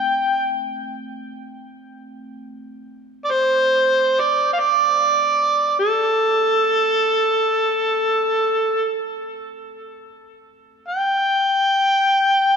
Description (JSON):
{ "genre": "world meditative, free-time meditation music", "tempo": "free time", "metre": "none", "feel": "none", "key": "unclear", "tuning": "A4 = 440 Hz", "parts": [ { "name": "overdriven harmonica", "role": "melody", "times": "0.0-12.6 s", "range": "A4 to G5", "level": "-17 LUFS", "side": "right 1 dB", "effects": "ping-pong delay" }, { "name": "bronze singing bowl", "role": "texture", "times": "0.0-1.9 s", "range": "A3 to C4", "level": "-42 LUFS", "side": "right 1 dB", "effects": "none" } ], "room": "wet church reverb, RT60 3.2 s", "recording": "none", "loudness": "-16 LUFS", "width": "side -6 dB against mid", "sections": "0.0-12.6 A section", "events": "none", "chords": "none", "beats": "free time" }